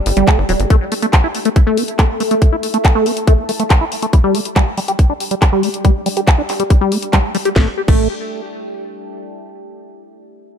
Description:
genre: psychedelic trance.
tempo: 140 BPM.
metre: 4/4.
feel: straight.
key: unclear.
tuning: A4 = 440 Hz.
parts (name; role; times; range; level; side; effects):
deep dark ambient pad; texture; 0.0-9.2 s; G4 to A5; -26 LUFS; left 1 dB; chorus, built-in reverb, sidechain pumping.
tight sequencer bass; bass; 0.1-0.7, 7.6-8.1 s; D1 to A1; -18 LUFS; equal; none.
drum and bass drum kit; drums; 0.1-8.0 s; crash cymbal, handclaps, hi-hat, snare drum; -20 LUFS; equal; none.
liquid acid bass; riff; 0.2-8.1 s; F#3 to G4; -18 LUFS; moving between left 3 dB and right 4 dB; phaser, auto-pan, sidechain pumping, digital delay.
electronic kick drum; drums; 0.3-8.0 s; none; -11 LUFS; equal; none.
room: digital ambience.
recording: none.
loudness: -12 LUFS.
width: side -8 dB against mid.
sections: 0.0-7.6 A section; 7.6-9.3 B section.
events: fade-out on ambient pad 0.0-7.6; filter sweep on acid bass 0.0-7.6.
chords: 0.0 G5; 0.7 A5; 4.1 G5; 7.6 A5.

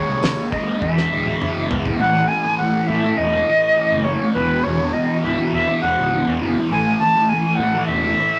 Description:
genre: psychedelic rock.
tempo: 102 BPM.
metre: 4/4.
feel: straight.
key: unclear.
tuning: A4 = 440 Hz.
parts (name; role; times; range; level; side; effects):
jazz flute; melody; 0.0-8.4 s; B4 to A5; -22 LUFS; equal; none.
thick fuzz guitar; riff; 0.0-8.4 s; Eb2 to E4; -23 LUFS; equal; distortion, phaser.
fuzz picked electric bass; bass; 0.1-8.1 s; Db1 to A2; -29 LUFS; equal; overdrive.
damped 70s drum kit; drums; 0.2-2.0 s; hi-hat, kick drum, snare drum, toms; -27 LUFS; equal; none.
room: wet club reverb, RT60 0.6 s.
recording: none.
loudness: -19 LUFS.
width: mono.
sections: 0.0-2.0 A section; 2.0-8.4 B section.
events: drum fill 0.8-2.0.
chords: 0.0 Ebsus4; 0.8 E7; 2.0 A5; 4.4 Esus2; 6.7 A5.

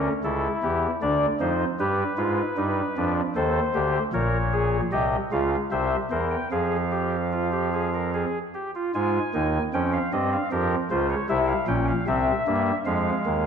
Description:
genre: classical, baroque-style 3-part fugue for pipe organ.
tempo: 76 BPM.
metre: 3/4.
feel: straight.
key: F minor from 4.1 s.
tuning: A4 = 440 Hz.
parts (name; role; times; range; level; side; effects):
chamber organ, soft reed; solo; 0.0-13.5 s; Bb1 to Ab5; -22 LUFS; equal; none.
room: wet recital hall reverb, RT60 1.4 s.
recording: nothing above 10.3 kHz.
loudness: -22 LUFS.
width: side -7 dB against mid.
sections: 0.0-8.9 A section; 8.9-13.5 B section.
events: none.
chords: 0.0 A7; 1.0 Dm; 1.8 G7; 3.4 Cm/Eb; 4.1 Bbm7; 4.9 F5/C; 5.7 C; 6.5 Fm; 10.5 Gm7b5/F; 11.3 C7; 12.9 Fm.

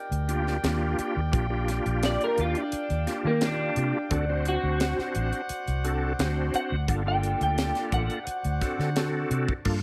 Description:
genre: straight-eighth soul blues.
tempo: 86 BPM.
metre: 4/4.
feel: straight.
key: unclear.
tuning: A4 = 440 Hz.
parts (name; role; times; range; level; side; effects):
mellow horn section; sustained chords; 0.0-9.6 s; D4 to G5; -38 LUFS; equal; none.
vintage muted fingered electric bass; bass; 0.1-9.8 s; G1 to Eb3; -30 LUFS; equal; none.
tight funk drum kit; drums; 0.1-9.8 s; crash cymbal, hi-hat, kick drum, snare drum; -34 LUFS; equal; none.
bright tonewheel organ; accompaniment; 0.3-9.8 s; Bb3 to C5; -34 LUFS; equal; slow rotary speaker, chorus vibrato.
electric guitar through a small old amp; melody; 2.1-9.6 s; Bb3 to G5; -31 LUFS; equal; analog chorus.
room: small room ambience.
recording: none.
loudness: -27 LUFS.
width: mono.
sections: 0.0-9.7 A section.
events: clean electric guitar solo 0.0-9.7.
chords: 0.0 Ebmaj7; 4.1 D7; 6.9 Gm7; 8.3 D7.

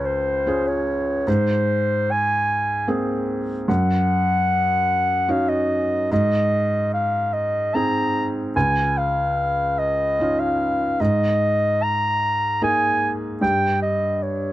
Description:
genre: acoustic folk-pop ballad.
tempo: 74 BPM.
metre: 3/4.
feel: straight.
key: unclear.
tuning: A4 = 440 Hz.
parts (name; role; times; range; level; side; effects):
dark clarinet; melody; 0.0-14.5 s; C5 to Bb5; -20 LUFS; equal; none.
felt-muted upright piano; accompaniment; 0.0-14.5 s; Db2 to Ab4; -23 LUFS; right 1 dB; none.
room: little or no reverb.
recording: close, detailed microphones.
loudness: -18 LUFS.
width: side -15 dB against mid.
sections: 0.0-14.5 A section.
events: none.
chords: 0.0 Db; 1.3 Abadd9; 3.7 Ebm7/Gb; 6.1 Ab; 8.6 Dbadd9; 11.0 Absus2; 13.4 Eb7/G.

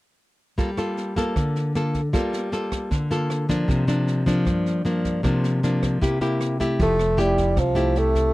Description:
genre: bossa nova.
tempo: 155 BPM.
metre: 4/4.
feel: straight.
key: F major.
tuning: A4 = 441 Hz.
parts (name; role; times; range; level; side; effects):
nylon-string guitar; accompaniment; 0.6-8.3 s; G2 to A4; -22 LUFS; left 1 dB; none.
jazz brush drum kit; drums; 0.6-8.2 s; kick drum, rim click, snare drum; -28 LUFS; right 1 dB; none.
mellow bassoon; melody; 6.8-8.3 s; F3 to A3; -21 LUFS; right 1 dB; none.
upright bass; bass; 6.8-8.3 s; F1 to C2; -23 LUFS; right 1 dB; none.
room: little or no reverb.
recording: dry, close 1970s-style studio recording.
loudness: -20 LUFS.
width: side -18 dB against mid.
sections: 0.6-6.8 A section; 6.8-8.3 B section.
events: none.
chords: 0.6 Gm9; 3.7 C9sus4; 6.0 C7; 6.8 Fmaj9.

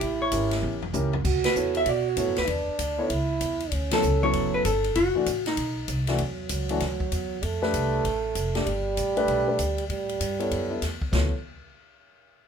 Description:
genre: jazz, small-group swing and bop.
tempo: 194 BPM.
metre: 4/4.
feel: swing 63% on 8ths.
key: D major.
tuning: A4 = 440 Hz.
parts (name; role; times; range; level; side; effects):
hollow-body jazz guitar; melody; 0.0-6.0 s; D#4 to E5; -25 LUFS; left 1 dB; none.
breathy trombone; second line; 0.0-11.3 s; F#3 to F#4; -28 LUFS; right 5 dB; none.
upright bass; bass; 0.0-11.3 s; F1 to B2; -30 LUFS; equal; none.
swinging big-band drum kit; drums; 0.0-11.2 s; crash cymbal, hi-hat, kick drum, ride cymbal, snare drum, toms; -32 LUFS; left 1 dB; none.
warm grand piano; accompaniment; 0.3-11.3 s; E3 to E5; -29 LUFS; left 2 dB; none.
room: moderate club reverb, RT60 0.6 s.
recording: minimal, uncompressed stereo recording.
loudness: -23 LUFS.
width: side -7 dB against mid.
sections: 0.0-6.2 A section; 6.2-11.1 B section; 11.1-12.4 C section.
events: drum fill 0.6-1.2; band accent 1.4, 3.9.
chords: 0.0 A7b9; 1.2 D69; 1.9 Bm9; 2.5 E5; 3.1 C#m; 3.7 Dmaj7; 5.0 F#m; 5.6 B7b9; 6.2 Esus2; 7.4 F69; 8.7 Gadd9; 9.9 A13; 11.1 Dmaj7(no3).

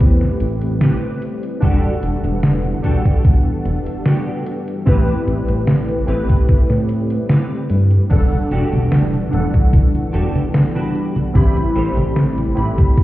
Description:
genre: vaporwave.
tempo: 74 BPM.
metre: 4/4.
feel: straight.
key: A dorian.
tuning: A4 = 440 Hz.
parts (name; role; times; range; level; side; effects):
warbly lo-fi synth keys; accompaniment; 0.0-13.0 s; G3 to B5; -22 LUFS; equal; analog chorus, analog delay.
soft string machine; sustained chords; 0.0-13.0 s; E3 to F#5; -26 LUFS; left 1 dB; ensemble chorus.
clean electric guitar; riff; 0.0-13.0 s; C4 to C5; -29 LUFS; right 1 dB; ensemble chorus, analog delay.
chorused synth bass; bass; 0.0-13.0 s; E1 to A2; -18 LUFS; equal; none.
detuned 8-bit digital drum machine; drums; 0.0-13.0 s; congas, crash cymbal, hi-hat, snare drum; -19 LUFS; equal; vintage 12-bit sampler grit.
electronic kick drum; drums; 0.0-13.0 s; none; -13 LUFS; equal; vintage 12-bit sampler grit.
room: digital ambience.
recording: heard muffled through a wall, cassette tape, stone room reverb, EQ.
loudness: -14 LUFS.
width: side -16 dB against mid.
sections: 0.0-8.1 A section; 8.1-13.0 B section.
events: none.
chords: 0.0 Am9; 1.6 Em11; 4.9 Am9; 8.1 Em11; 11.4 Am9.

